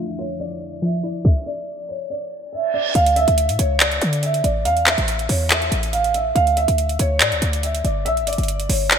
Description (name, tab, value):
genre	hip hop, trap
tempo	141 BPM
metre	4/4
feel	half-time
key	D harmonic minor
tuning	A4 = 439 Hz
part	dark concert grand piano	melody	0.0-9.0 s	C#5 to F5	-21 LUFS	right 2 dB	lush chorus, low-pass filter, ping-pong delay
part	soft round pluck	accompaniment	0.0-1.2 s	F3 to F4	-26 LUFS	equal	chorus, low-pass filter
part	dark analog pad	sustained chords	0.0-1.2 s	F3 to E5	-34 LUFS	left 2 dB	chorus, phaser
part	trap drum kit	drums	0.1-9.0 s	handclaps, hi-hat, kick drum, snare drum	-20 LUFS	equal	gated reverb
part	reverse cymbal	sound effects	2.6-3.0 s	none	-30 LUFS	right 6 dB	none
part	short 808-style bass	bass	3.0-9.0 s	G1 to D3	-21 LUFS	equal	none
room	moderate plate reverb, RT60 2.6 s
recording	bright 1980s-style digital production, low-pass filter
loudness	-17 LUFS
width	side -7 dB against mid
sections	0.0-3.0 A section; 3.0-9.0 B section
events	filter sweep 0.0-3.0; reverse cymbal 2.6-3.0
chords	0.0 Dmadd9; 1.2 N.C.; 3.0 Dsus2; 4.7 A5; 6.4 Dsus2; 8.1 Gm